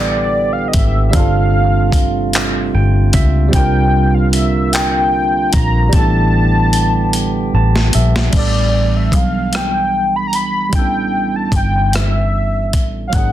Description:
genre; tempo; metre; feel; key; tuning
slow six-eight R&B; 50 BPM (dotted quarters); 6/8; straight; unclear; A4 = 441 Hz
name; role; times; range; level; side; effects
warm velvety synth lead; melody; 0.0-13.3 s; D5 to B5; -18 LUFS; left 1 dB; chorus
barky tine electric piano; accompaniment; 0.0-13.3 s; E3 to A5; -20 LUFS; right 5 dB; overdrive, phaser
tonewheel organ; sustained chords; 0.0-8.3 s; C3 to G4; -25 LUFS; equal; stopped rotary speaker
vintage muted fingered electric bass; bass; 0.0-13.3 s; G1 to C#2; -16 LUFS; equal; none
dusty soul sampler-style drum kit; drums; 0.7-13.3 s; crash cymbal, handclaps, hi-hat, kick drum, rim click, snare drum; -16 LUFS; equal; none
room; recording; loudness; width
light reverb; dense, heavily limited modern master; -12 LUFS; side -12 dB against mid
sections
0.0-8.3 A section; 8.3-13.3 B section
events
tine electric piano fill 2.3-3.5, 7.1-8.3; drum fill 5.9-8.3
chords
0.0 A9sus4; 1.1 G9sus4; 3.5 C9sus4; 5.9 A9sus4

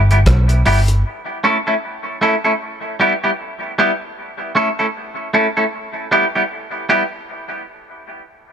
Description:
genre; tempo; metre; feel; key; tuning
dub reggae; 77 BPM; 4/4; swing 59% on 16ths; E dorian; A4 = 440 Hz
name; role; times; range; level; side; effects
vintage muted fingered electric bass; bass; 0.0-1.0 s; G1 to B1; -12 LUFS; equal; none
clean electric guitar; accompaniment; 0.1-7.0 s; G3 to A4; -17 LUFS; equal; dub echo
cloth-damped thuddy drum kit; drums; 0.1-1.0 s; hi-hat, kick drum, rim click; -18 LUFS; equal; none
room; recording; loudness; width
light reverb, studio ambience; echo-heavy mix; -15 LUFS; side -8 dB against mid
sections
0.0-7.3 A section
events
none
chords
0.0 Em; 1.0 A; 2.6 Em; 4.2 A; 5.7 Em

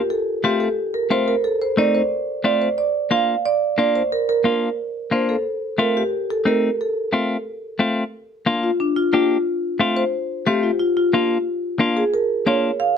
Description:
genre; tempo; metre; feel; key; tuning
latin; 180 BPM; 4/4; straight; Bb major; A4 = 440 Hz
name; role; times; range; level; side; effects
marimba with medium mallets; melody; 0.1-13.0 s; D4 to F5; -20 LUFS; right 1 dB; none
clean electric guitar; accompaniment; 0.4-12.7 s; A3 to G4; -20 LUFS; left 2 dB; none
room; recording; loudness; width
light reverb; close, detailed microphones; -18 LUFS; side -7 dB against mid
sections
0.0-8.1 A section; 8.1-13.0 B section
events
marimba solo 8.1-13.0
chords
0.1 F; 2.8 Bb; 5.5 F; 8.1 Bb; 9.5 F; 10.8 Bb

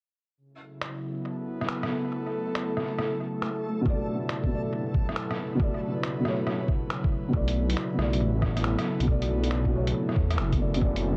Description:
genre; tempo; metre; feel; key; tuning
future garage; 138 BPM; 4/4; swing 66% on 16ths; B minor; A4 = 439 Hz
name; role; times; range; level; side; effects
airy breathy pad; sustained chords; 0.4-11.2 s; C#3 to B4; -35 LUFS; equal; chorus, vintage 12-bit sampler grit, sidechain pumping
backwards swelling texture; texture; 1.4-7.3 s; A3 to A4; -41 LUFS; equal; built-in reverb
lo-fi sampler-style drum kit; drums; 0.8-11.0 s; finger snaps, hi-hat, rim click; -36 LUFS; equal; analog delay
felt-muted upright piano; accompaniment; 3.8-11.2 s; B2 to D5; -33 LUFS; equal; sidechain pumping, low-pass filter, analog delay
electronic kick drum; drums; 3.9-10.9 s; none; -30 LUFS; equal; none
swelling detuned saw bass; bass; 7.3-11.2 s; F#1 to E2; -29 LUFS; equal; sidechain pumping
room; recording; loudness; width
digital ambience; echo-heavy mix, cassette tape; -28 LUFS; mono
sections
0.4-7.3 A section; 7.3-11.2 B section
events
filter sweep on felt piano 7.3-11.2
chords
0.4 Bm7

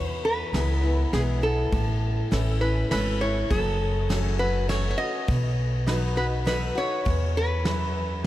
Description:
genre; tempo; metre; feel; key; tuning
honky-tonk and classic country; 101 BPM; 3/4; straight; E major; A4 = 439 Hz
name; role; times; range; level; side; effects
lap resonator guitar; melody; 0.0-8.2 s; G#4 to D#5; -28 LUFS; right 1 dB; tape echo
picked steel-string acoustic guitar; accompaniment; 0.0-8.2 s; E2 to F#4; -31 LUFS; left 3 dB; none
upright bass; bass; 0.0-8.3 s; F#1 to E2; -26 LUFS; equal; none
honky-tonk upright piano; accompaniment; 0.5-8.1 s; B3 to B4; -37 LUFS; right 3 dB; none
soft brush drum kit; drums; 0.5-8.3 s; kick drum, ride cymbal, snare drum; -31 LUFS; equal; none
room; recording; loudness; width
light reverb, small room reverb; none; -22 LUFS; side -14 dB against mid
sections
0.0-8.3 A section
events
none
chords
0.0 E; 1.7 A; 3.5 F#m; 5.3 B; 7.1 E

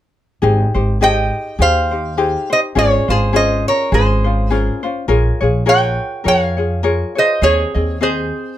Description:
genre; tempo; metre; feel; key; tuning
Hawaiian; 103 BPM; 4/4; swing 56% on 8ths; Ab major; A4 = 440 Hz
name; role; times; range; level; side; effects
ukulele; accompaniment; 0.4-8.6 s; C4 to Eb5; -19 LUFS; left 4 dB; none
upright bass; bass; 0.4-8.3 s; Ab1 to F2; -17 LUFS; equal; none
lap resonator guitar; melody; 1.0-8.6 s; Ab4 to G5; -16 LUFS; right 2 dB; none
room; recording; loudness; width
light reverb; close, detailed microphones; -13 LUFS; side -12 dB against mid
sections
0.4-8.6 A section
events
none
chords
0.4 Abmaj7; 2.8 Dbmaj7/Ab; 5.1 Bbm7; 7.4 Ab/Eb

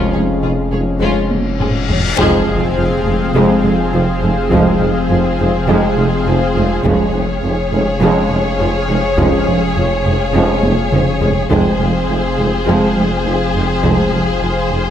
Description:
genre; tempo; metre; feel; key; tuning
cinematic, hybrid orchestral and electronic film score; 103 BPM; 4/4; straight; F minor; A4 = 439 Hz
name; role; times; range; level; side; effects
rich symphonic violin section; melody; 0.0-14.9 s; F4 to Db5; -23 LUFS; left 3 dB; none
warm symphonic violin section; second line; 0.0-14.9 s; Db4 to Ab4; -23 LUFS; left 5 dB; none
dark symphonic viola section; accompaniment; 0.0-14.8 s; F3 to Ab3; -20 LUFS; right 1 dB; none
chorused pulse-width pad; sustained chords; 0.0-14.9 s; F3 to F5; -20 LUFS; left 1 dB; none
dark French horn section; sustained chords; 0.0-14.0 s; Ab3 to Db4; -25 LUFS; left 2 dB; none
mellow trombone section; sustained chords; 0.0-14.0 s; F2 to F3; -25 LUFS; right 4 dB; none
saturated sub bass; bass; 0.0-14.9 s; F1; -23 LUFS; left 1 dB; none
reverse cymbal and impact; sound effects; 1.4-4.5 s; none; -24 LUFS; left 3 dB; none
warm symphonic cello section; bass; 0.1-14.8 s; F2; -22 LUFS; right 2 dB; none
warm symphonic double bass section; bass; 0.1-14.8 s; F1; -22 LUFS; right 2 dB; none
warm tuba; bass; 0.1-14.8 s; F1; -23 LUFS; right 2 dB; none
solo taiko drums; drums; 1.3-14.4 s; none; -21 LUFS; left 1 dB; none
room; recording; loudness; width
moderate scoring stage reverb, RT60 1.9 s; none; -12 LUFS; side -10 dB against mid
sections
0.0-2.2 A section; 2.2-14.9 B section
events
drum fill 1.3-2.2, 10.6-11.5; reverse cymbal 1.4-2.2; band accent 2.2-2.8; impact 2.2-4.5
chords
0.0 Db/F; 2.2 Fm; 6.8 Db/F; 11.5 Fm

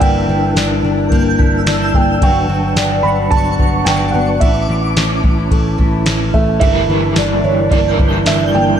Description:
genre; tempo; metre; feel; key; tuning
dream pop; 109 BPM; 4/4; straight; unclear; A4 = 440 Hz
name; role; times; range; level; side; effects
felt-muted upright piano; melody; 0.0-8.8 s; C#5 to B5; -19 LUFS; right 6 dB; digital delay
mellow tonewheel organ; sustained chords; 0.0-8.8 s; E3 to A5; -20 LUFS; right 2 dB; chorus vibrato, fast rotary speaker
fingerpicked twelve-string acoustic guitar; arpeggios; 0.0-8.8 s; E3 to D4; -19 LUFS; left 5 dB; wide subtle chorus, digital delay
vintage muted picked electric bass; bass; 0.0-8.8 s; G1 to A1; -18 LUFS; equal; none
soft vintage rhythm box; drums; 0.0-8.4 s; kick drum, ride cymbal, snare drum, tambourine; -16 LUFS; equal; none
twinkling granular texture; texture; 0.6-8.8 s; C#6 to G6; -25 LUFS; right 2 dB; built-in reverb, digital delay
crunchy overdriven guitar; accompaniment; 6.6-8.8 s; G3 to Bb4; -19 LUFS; right 2 dB; tremolo, wide subtle chorus
room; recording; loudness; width
light reverb; dark, warm production; -11 LUFS; side -9 dB against mid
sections
0.0-8.8 A section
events
none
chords
0.0 Gm6; 2.2 Gmaj7; 4.4 A; 6.6 Gm6

